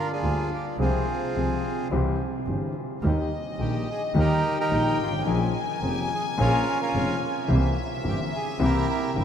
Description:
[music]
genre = tango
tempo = 108 BPM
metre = 4/4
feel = rubato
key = unclear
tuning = A4 = 440 Hz
[part]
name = bandoneon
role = melody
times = 0.0-9.2 s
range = C4 to Bb4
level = -28 LUFS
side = right 2 dB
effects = none
[part]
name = warm grand piano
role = accompaniment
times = 0.2-9.2 s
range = F1 to Ab4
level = -27 LUFS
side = left 2 dB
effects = none
[part]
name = clear double bass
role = bass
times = 0.2-9.2 s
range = F1 to Eb2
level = -28 LUFS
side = right 2 dB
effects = none
[part]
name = warm studio violin section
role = second line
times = 3.0-9.2 s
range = Eb5 to Ab5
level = -31 LUFS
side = left 4 dB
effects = none
[sound]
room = wet cathedral reverb, RT60 6.5 s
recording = in a vast, echoing space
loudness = -23 LUFS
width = side -8 dB against mid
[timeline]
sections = 0.0-9.2 A section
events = none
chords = 0.0 Gm7; 0.8 Fm/C; 1.9 C; 3.0 Eb; 5.3 Bbm7; 7.5 C7

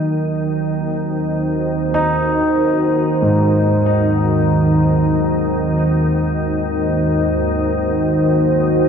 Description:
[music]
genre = dark ambient drone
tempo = free time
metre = none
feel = none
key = unclear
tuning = A4 = 439 Hz
[part]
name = deep dark ambient pad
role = sustained chords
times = 0.0-8.9 s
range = Eb4 to C5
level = -19 LUFS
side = right 1 dB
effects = chorus, built-in reverb
[part]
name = organ-like drone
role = drone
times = 0.0-8.9 s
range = Eb2 to Eb3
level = -17 LUFS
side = equal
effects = ensemble chorus, built-in reverb
[part]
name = dark baby grand piano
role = arpeggios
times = 1.9-8.9 s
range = Ab2 to Eb4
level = -20 LUFS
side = left 1 dB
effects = ping-pong delay
[sound]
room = wet cathedral reverb, RT60 5.0 s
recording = dark, warm production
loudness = -14 LUFS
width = side -7 dB against mid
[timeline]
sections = 0.0-8.9 A section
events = none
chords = 0.0 Ebm

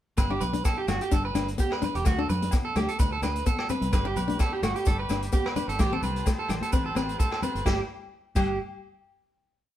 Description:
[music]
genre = highlife guitar band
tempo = 129 BPM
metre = 4/4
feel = straight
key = G major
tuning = A4 = 436 Hz
[part]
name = picked plugged-in steel-string acoustic guitar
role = accompaniment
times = 0.2-8.5 s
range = G3 to D4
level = -32 LUFS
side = left 4 dB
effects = none
[part]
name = electric guitar at the edge of break-up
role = arpeggios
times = 0.2-8.6 s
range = F#4 to B4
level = -30 LUFS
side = right 3 dB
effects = none
[part]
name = fingered electric bass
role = bass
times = 0.2-8.6 s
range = E1 to F#2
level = -31 LUFS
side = equal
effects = none
[part]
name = vintage drum kit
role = drums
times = 0.2-8.5 s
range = crash cymbal, hi-hat, kick drum, rim click, snare drum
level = -28 LUFS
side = equal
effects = none
[part]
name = agogo bells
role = percussion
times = 0.2-8.5 s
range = none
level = -40 LUFS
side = left 4 dB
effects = none
[part]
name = congas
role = percussion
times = 0.2-8.6 s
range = none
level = -36 LUFS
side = equal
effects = none
[part]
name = maracas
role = percussion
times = 0.2-8.6 s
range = none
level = -45 LUFS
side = left 6 dB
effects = none
[part]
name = combo organ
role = sustained chords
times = 3.9-7.9 s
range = G4 to D5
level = -40 LUFS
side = left 2 dB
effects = none
[sound]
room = light reverb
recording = band playing live in one room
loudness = -24 LUFS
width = side -12 dB against mid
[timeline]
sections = 0.2-7.7 groove; 7.7-9.5 final chord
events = none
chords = 0.2 G; 2.1 D; 3.9 G; 5.8 Am7; 7.7 N.C.

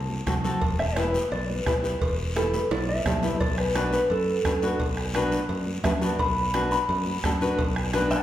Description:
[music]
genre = latin, cumbia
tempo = 172 BPM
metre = 4/4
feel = straight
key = unclear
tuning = A4 = 440 Hz
[part]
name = fingered electric bass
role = bass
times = 0.0-8.1 s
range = E1 to F#2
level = -29 LUFS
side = equal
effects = none
[part]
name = congas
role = percussion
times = 0.1-8.2 s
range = none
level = -34 LUFS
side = right 2 dB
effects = none
[part]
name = nylon-string guitar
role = accompaniment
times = 0.3-8.2 s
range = C4 to B4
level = -29 LUFS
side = left 2 dB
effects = none
[part]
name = bombo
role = percussion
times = 0.3-8.1 s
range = none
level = -31 LUFS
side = right 1 dB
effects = none
[part]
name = cowbell and timbales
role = percussion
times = 0.3-8.1 s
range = none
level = -36 LUFS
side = right 3 dB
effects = none
[part]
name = guiro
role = percussion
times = 0.3-8.2 s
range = none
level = -39 LUFS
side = left 3 dB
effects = none
[part]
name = mellow electric guitar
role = melody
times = 0.8-8.2 s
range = A4 to B5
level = -27 LUFS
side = equal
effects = spring reverb
[sound]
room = wet recital hall reverb, RT60 1.6 s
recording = recorded in a church or concert hall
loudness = -23 LUFS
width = side -12 dB against mid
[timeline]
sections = 0.0-8.2 A section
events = clean electric guitar solo 0.0-8.2; drum fill 2.7-3.4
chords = 0.0 F#dim; 0.6 Em; 3.4 Bm

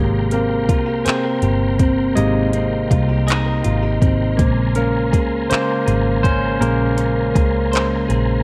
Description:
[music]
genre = slow six-eight R&B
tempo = 54 BPM (dotted quarters)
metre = 6/8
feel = straight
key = Bb dorian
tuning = A4 = 440 Hz
[part]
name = semi-hollow electric guitar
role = second line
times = 0.0-8.4 s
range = Ab3 to C5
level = -28 LUFS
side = equal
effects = none
[part]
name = barky tine electric piano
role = accompaniment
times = 0.0-8.4 s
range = C3 to Eb5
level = -22 LUFS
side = equal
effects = overdrive
[part]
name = tonewheel organ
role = sustained chords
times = 0.0-8.4 s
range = Bb4 to C6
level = -32 LUFS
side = equal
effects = chorus vibrato, fast rotary speaker
[part]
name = vintage muted picked electric bass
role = bass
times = 0.0-8.4 s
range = G1 to Db2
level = -22 LUFS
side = equal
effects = none
[part]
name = smooth R&B drum kit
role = drums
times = 0.3-8.3 s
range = handclaps, hi-hat, kick drum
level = -21 LUFS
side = equal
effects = overdrive
[sound]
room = light reverb, digital ambience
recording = dark, warm production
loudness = -18 LUFS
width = mono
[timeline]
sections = 0.0-8.4 A section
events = tine electric piano solo 0.0-8.4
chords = 0.0 Abmaj9; 4.4 Bbm9

